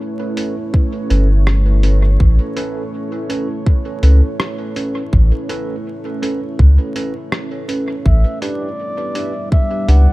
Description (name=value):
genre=ambient dub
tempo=82 BPM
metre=4/4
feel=swing 58% on 16ths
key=A mixolydian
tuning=A4 = 440 Hz
part: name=deep dark ambient pad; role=sustained chords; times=0.0-10.1 s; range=G3 to D5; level=-24 LUFS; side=equal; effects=chorus, built-in reverb
part: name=bell-like tine electric piano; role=stabs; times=0.4-10.1 s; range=C#4 to B4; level=-26 LUFS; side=right 2 dB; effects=low-pass filter, dub echo
part: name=lo-fi sampler-style drum kit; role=drums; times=0.4-10.1 s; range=hi-hat, rim click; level=-25 LUFS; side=equal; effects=overdrive, dub echo
part: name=electronic kick drum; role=drums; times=0.7-9.7 s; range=none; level=-13 LUFS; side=equal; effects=none
part: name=warm sub bass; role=bass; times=1.1-10.1 s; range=G1 to C#2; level=-10 LUFS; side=equal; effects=none
part: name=trumpet with bucket mute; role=melody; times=8.1-10.1 s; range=D5 to F#5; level=-24 LUFS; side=left 1 dB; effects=dub echo
room=little or no reverb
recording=dark, warm production, vinyl crackle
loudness=-14 LUFS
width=side -19 dB against mid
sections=0.0-10.1 A section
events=filter sweep on tine electric piano 0.0-10.1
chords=0.0 Aadd9; 8.1 G